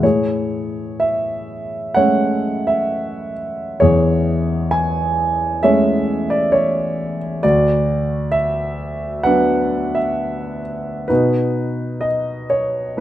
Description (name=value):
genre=classical, lyrical solo piano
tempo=65 BPM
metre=4/4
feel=uneven beats, rubato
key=A major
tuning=A4 = 440 Hz
part: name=dark concert grand piano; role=solo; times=0.0-13.0 s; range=D2 to G#5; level=-16 LUFS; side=equal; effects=none
room=light reverb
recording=close, detailed microphones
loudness=-16 LUFS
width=side -13 dB against mid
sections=0.0-13.0 A section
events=none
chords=0.0 Amaj7; 7.4 D6; 11.1 B